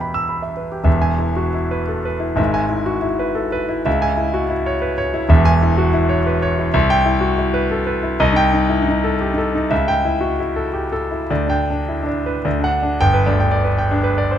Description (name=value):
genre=classical, romantic character piece for solo piano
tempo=102-128 BPM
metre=3/4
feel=rubato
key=E major, G major from 6.7 s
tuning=A4 = 440 Hz
part: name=clear grand piano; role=solo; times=0.0-14.4 s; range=E1 to E6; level=-16 LUFS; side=equal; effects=none
room=light reverb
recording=close, detailed microphones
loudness=-16 LUFS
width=side -10 dB against mid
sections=0.9-13.0 A section; 13.0-14.4 B section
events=none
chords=0.0 Em; 0.9 E; 2.4 E/G#; 3.9 C#m; 5.3 C#m/E; 6.7 Cmaj7; 8.2 Am7b5/C; 9.7 A7/C#; 11.3 G/D; 12.4 D; 13.0 G